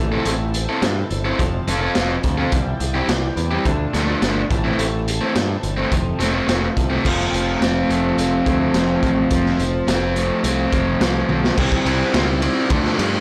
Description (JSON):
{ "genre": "indie rock", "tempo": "106 BPM", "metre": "4/4", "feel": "straight", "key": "unclear", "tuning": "A4 = 441 Hz", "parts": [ { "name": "chorused pulse-width pad", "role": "sustained chords", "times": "0.0-13.2 s", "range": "E4 to A5", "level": "-33 LUFS", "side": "equal", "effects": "none" }, { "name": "crunchy overdriven guitar", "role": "riff", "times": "0.0-11.6 s", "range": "F2 to A4", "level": "-27 LUFS", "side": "equal", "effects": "subtle chorus, slapback echo" }, { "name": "modern bright picked electric bass", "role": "bass", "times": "0.0-13.2 s", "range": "F1 to G2", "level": "-26 LUFS", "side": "equal", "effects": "none" }, { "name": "raw garage guitar", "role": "riff", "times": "0.1-13.2 s", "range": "E3 to A4", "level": "-24 LUFS", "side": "equal", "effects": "overdrive" }, { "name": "raw garage drum kit", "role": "drums", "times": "0.3-13.1 s", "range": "crash cymbal, hi-hat, kick drum, ride cymbal, snare drum, toms", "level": "-25 LUFS", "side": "equal", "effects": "none" } ], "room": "light reverb, small room ambience", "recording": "blown-out, overdriven recording, overdrive", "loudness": "-19 LUFS", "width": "mono", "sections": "0.0-7.0 A section; 7.0-11.6 B section; 11.6-13.2 C section", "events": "drum fill 11.3", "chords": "0.0 Am; 1.4 F; 2.5 Cadd9; 3.7 Dm; 4.5 Am; 5.9 F; 11.6 Cadd9; 12.7 Dm" }